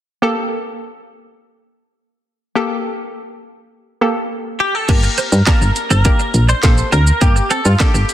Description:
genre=dance-pop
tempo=103 BPM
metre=4/4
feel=straight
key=G minor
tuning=A4 = 441 Hz
part: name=hollow square pluck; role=accompaniment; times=0.2-8.1 s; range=Bb3 to A5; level=-21 LUFS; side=equal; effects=chorus, sidechain pumping
part: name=direct-recorded clean electric guitar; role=melody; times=4.6-8.1 s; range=F4 to C5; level=-19 LUFS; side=left 1 dB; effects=analog chorus, digital delay
part: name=twelve-string electric guitar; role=riff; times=4.9-8.0 s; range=Bb3 to D4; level=-24 LUFS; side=right 5 dB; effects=ensemble chorus
part: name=solid FM bass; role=bass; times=4.9-8.0 s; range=G1 to G2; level=-14 LUFS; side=equal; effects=sidechain pumping
part: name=house drum kit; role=drums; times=4.9-8.1 s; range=crash cymbal, handclaps, hi-hat, kick drum, shaker, snare drum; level=-15 LUFS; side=equal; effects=none
room=light reverb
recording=dense, heavily limited modern master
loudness=-13 LUFS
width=side -12 dB against mid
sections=0.2-4.9 A section; 4.9-8.1 B section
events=none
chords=0.2 Gmadd9

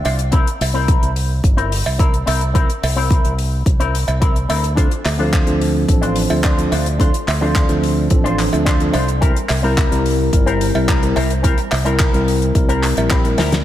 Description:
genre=nu-disco, nu disco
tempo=108 BPM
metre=4/4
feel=straight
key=unclear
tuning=A4 = 439 Hz
part: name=electric guitar with an envelope filter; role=riff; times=0.0-13.5 s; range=C4 to E5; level=-23 LUFS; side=left 2 dB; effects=analog chorus, low-pass filter, diffuse ambient delay
part: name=damped 70s drum kit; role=drums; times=0.0-13.6 s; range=handclaps, hi-hat, snare drum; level=-24 LUFS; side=left 2 dB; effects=none
part: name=fingered electric bass with an envelope filter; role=bass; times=0.1-13.6 s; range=G1 to D2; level=-19 LUFS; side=equal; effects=sidechain pumping
part: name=cowbell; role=percussion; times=0.1-13.5 s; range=none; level=-27 LUFS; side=right 3 dB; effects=none
part: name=electronic kick drum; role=drums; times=0.3-13.2 s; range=none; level=-16 LUFS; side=equal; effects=none
part: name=tine electric piano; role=accompaniment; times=4.8-13.4 s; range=F3 to Bb4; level=-19 LUFS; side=equal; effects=diffuse ambient delay
room=light reverb, small room ambience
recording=none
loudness=-14 LUFS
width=side -12 dB against mid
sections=0.0-13.6 A section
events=clean electric guitar fill 0.0-0.3; drum fill 13.4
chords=0.3 C7; 4.8 Dm7; 9.2 C7

